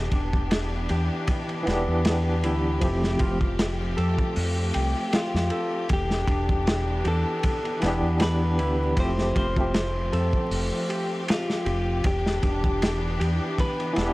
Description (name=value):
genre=trip hop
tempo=78 BPM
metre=4/4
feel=swing 54% on 16ths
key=E phrygian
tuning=A4 = 440 Hz
part: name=bright symphonic string section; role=sustained chords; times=0.0-14.1 s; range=E3 to G4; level=-32 LUFS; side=left 1 dB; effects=vintage 12-bit sampler grit
part: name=Celtic harp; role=arpeggios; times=0.0-14.1 s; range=D4 to G5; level=-34 LUFS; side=equal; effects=vintage 12-bit sampler grit, tape echo
part: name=deep dub fingered electric bass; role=bass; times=0.0-14.1 s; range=E1 to F2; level=-26 LUFS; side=equal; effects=none
part: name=crunchy breakbeat drum kit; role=drums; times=0.1-14.1 s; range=hi-hat, kick drum, ride cymbal, snare drum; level=-27 LUFS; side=equal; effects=vintage 12-bit sampler grit
part: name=barky tine electric piano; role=accompaniment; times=1.6-14.1 s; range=E3 to G4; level=-27 LUFS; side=equal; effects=fast tremolo, harmonic tremolo, tape echo
part: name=clean electric guitar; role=melody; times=5.2-14.1 s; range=F4 to C5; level=-30 LUFS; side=left 1 dB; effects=tape echo
room=studio ambience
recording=dry, gritty hardware recording, vinyl crackle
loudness=-22 LUFS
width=side -19 dB against mid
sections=0.0-14.1 A section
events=none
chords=0.0 Em7; 2.8 Fadd9; 5.9 Em7; 9.0 Fadd9; 12.1 Em7